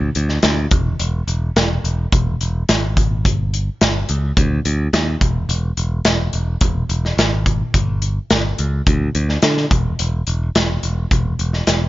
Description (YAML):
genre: hard rock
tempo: 107 BPM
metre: 4/4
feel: straight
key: unclear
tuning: A4 = 440 Hz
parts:
  - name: modern bright picked electric bass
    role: bass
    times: 0.0-11.9 s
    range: E1 to D3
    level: -19 LUFS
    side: equal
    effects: none
  - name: big rock drum kit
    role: drums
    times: 0.2-11.8 s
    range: hi-hat, kick drum, snare drum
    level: -18 LUFS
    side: equal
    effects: none
room: little or no reverb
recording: nothing above 7.5 kHz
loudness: -16 LUFS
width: side -16 dB against mid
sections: 0.0-11.9 A section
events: none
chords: none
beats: 0.43 1.00 1.56 | 2.12 2.68 3.25 3.81 | 4.37 4.93 5.50 6.06 | 6.62 7.18 7.74 8.30 | 8.87 9.43 9.99 10.55 | 11.11 11.67